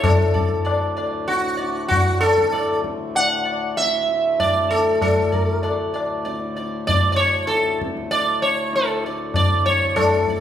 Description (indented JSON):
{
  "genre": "indian classical, Hindustani",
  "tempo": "97 BPM",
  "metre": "4/4",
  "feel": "straight",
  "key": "D raga hamsadhwani",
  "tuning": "A4 = 439 Hz",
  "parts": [
    { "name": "sitar", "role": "melody", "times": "0.0-10.4 s", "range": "F#4 to F#5", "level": "-19 LUFS", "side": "right 1 dB", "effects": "none" },
    { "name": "hand-pumped harmonium", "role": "drone", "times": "0.0-10.4 s", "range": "D2 to A2", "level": "-30 LUFS", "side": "left 3 dB", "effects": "none" },
    { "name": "tabla", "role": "percussion", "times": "0.0-10.4 s", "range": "none", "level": "-23 LUFS", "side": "left 2 dB", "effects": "none" }
  ],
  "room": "wet recital hall reverb, RT60 1.5 s",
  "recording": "recorded in a church or concert hall",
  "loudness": "-18 LUFS",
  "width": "side -10 dB against mid",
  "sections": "0.0-10.0 A section",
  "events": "none",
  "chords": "none"
}